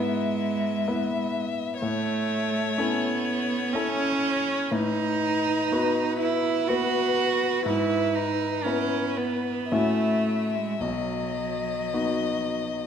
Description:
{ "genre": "classical, slow romantic movement for piano quartet", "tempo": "53-63 BPM", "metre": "3/4", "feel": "rubato", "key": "E major", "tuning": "A4 = 438 Hz", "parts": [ { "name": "warm violin", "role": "melody", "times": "0.0-12.9 s", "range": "B4 to E5", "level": "-30 LUFS", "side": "left 7 dB", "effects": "none" }, { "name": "rich cello", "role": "second line", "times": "0.0-12.9 s", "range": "F#3 to F#4", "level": "-26 LUFS", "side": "right 4 dB", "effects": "none" }, { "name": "clear concert grand piano", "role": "accompaniment", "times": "0.0-12.9 s", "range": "B1 to B4", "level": "-29 LUFS", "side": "left 2 dB", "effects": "none" } ], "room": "moderate scoring stage reverb, RT60 1.7 s", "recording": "none", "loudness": "-23 LUFS", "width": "side -8 dB against mid", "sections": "0.0-12.9 A section", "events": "none", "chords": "0.0 E/G#; 1.8 A; 4.7 B7/A; 7.7 E/G#; 9.7 F#m7/A; 10.8 B", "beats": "0.86 | 1.82 2.78 3.75 | 4.72 5.71 6.69 | 7.67 8.66 9.72 | 10.81 11.95" }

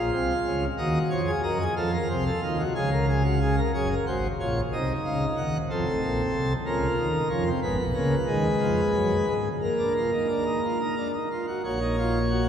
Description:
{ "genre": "classical, baroque-style 3-part fugue for pipe organ", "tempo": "61 BPM (dotted quarters)", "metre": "6/8", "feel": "straight", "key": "Bb minor, Eb minor from 7.6 s", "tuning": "A4 = 440 Hz", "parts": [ { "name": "pipe organ, plenum", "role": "solo", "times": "0.0-12.5 s", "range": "Gb1 to Gb5", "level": "-23 LUFS", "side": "equal", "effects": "none" } ], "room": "wet cathedral reverb, RT60 5.9 s", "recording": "recorded in a church or concert hall", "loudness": "-23 LUFS", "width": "side -8 dB against mid", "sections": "0.0-3.7 A section; 3.7-11.7 B section", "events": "none", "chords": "0.0 Bbm; 0.8 Ebm; 1.8 F7; 2.8 Bbm/Db; 3.7 Gbmaj7; 4.7 Cdim; 5.7 F; 6.7 Bbm/Db; 7.6 Fdim/Ab; 9.6 Bb; 11.7 Ebm/Bb", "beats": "0.79 | 1.77 2.76 | 3.74 4.73 | 5.70 6.67 | 7.63 8.61 | 9.61 10.63 | 11.65" }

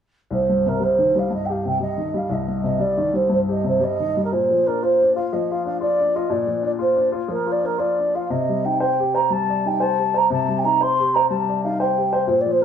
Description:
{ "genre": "celtic folk, Celtic slide", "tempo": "120 BPM (dotted quarters)", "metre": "12/8", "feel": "straight", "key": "C dorian", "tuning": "A4 = 439 Hz", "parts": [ { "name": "mellow hollow baroque flute", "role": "melody", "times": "0.3-12.6 s", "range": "Bb4 to C6", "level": "-20 LUFS", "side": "right 2 dB", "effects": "none" }, { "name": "warm upright piano", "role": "accompaniment", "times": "0.3-12.6 s", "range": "C2 to D5", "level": "-23 LUFS", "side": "left 3 dB", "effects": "none" } ], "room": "wet studio reverb, RT60 0.9 s", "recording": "band playing live in one room", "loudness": "-18 LUFS", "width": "side -8 dB against mid", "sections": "0.3-12.6 A section", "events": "none", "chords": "0.3 Cm; 4.3 Bb; 8.3 Cm", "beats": "| 0.29 0.80 1.30 1.80 | 2.30 2.80 3.30 3.80 | 4.30 4.80 5.30 5.80 | 6.30 6.80 7.30 7.80 | 8.30 8.79 9.29 9.79 | 10.29 10.79 11.29 11.78 | 12.28" }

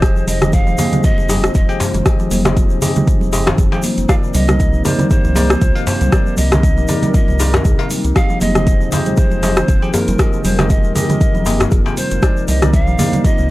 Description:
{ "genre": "afro house", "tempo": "118 BPM", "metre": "4/4", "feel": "swing 55% on 16ths", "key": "F dorian", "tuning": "A4 = 444 Hz", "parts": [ { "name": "breathy bright large pan pipes", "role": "melody", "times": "0.0-13.5 s", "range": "Bb4 to F5", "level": "-24 LUFS", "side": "right 2 dB", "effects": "tape echo" }, { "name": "dark analog pad", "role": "sustained chords", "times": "0.0-13.5 s", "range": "Ab3 to C5", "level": "-24 LUFS", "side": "right 1 dB", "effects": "wide subtle chorus, sidechain pumping" }, { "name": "kalimba", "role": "arpeggios", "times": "0.0-13.5 s", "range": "C3 to F4", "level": "-22 LUFS", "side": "left 1 dB", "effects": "sidechain pumping, tape echo" }, { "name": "bell-like tine electric piano", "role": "stabs", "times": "0.0-13.5 s", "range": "Eb4 to G5", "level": "-25 LUFS", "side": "left 2 dB", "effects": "fast stereo tremolo, sidechain pumping, tape echo" }, { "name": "warm sub bass", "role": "bass", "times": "0.0-13.5 s", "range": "Eb1 to C2", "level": "-18 LUFS", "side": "equal", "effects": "tube saturation, sidechain pumping" }, { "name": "deep house drum kit", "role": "drums", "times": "0.0-13.4 s", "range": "hi-hat, rim click", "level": "-21 LUFS", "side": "left 1 dB", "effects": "overdrive, studio reverb" }, { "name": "electronic kick drum", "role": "drums", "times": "0.0-13.4 s", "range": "none", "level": "-14 LUFS", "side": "equal", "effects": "studio reverb" }, { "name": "egg shaker", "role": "percussion", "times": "0.0-13.5 s", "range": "none", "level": "-30 LUFS", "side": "left 2 dB", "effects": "none" }, { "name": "congas", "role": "percussion", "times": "0.3-13.5 s", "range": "none", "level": "-20 LUFS", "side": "right 2 dB", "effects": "none" }, { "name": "djembe", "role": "percussion", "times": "0.8-13.4 s", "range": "none", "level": "-22 LUFS", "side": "left 1 dB", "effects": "none" } ], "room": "studio reverb", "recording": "dry, gritty hardware recording", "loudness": "-12 LUFS", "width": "side -18 dB against mid", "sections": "0.0-13.5 A section", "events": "none", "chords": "0.0 Fm7; 4.1 Cm7; 8.2 Fm7; 12.2 Cm7", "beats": "| 0.02 0.53 1.04 1.55 | 2.06 2.57 3.07 3.58 | 4.09 4.60 5.11 5.62 | 6.12 6.63 7.14 7.65 | 8.16 8.67 9.18 9.69 | 10.19 10.70 11.21 11.72 | 12.23 12.73 13.24" }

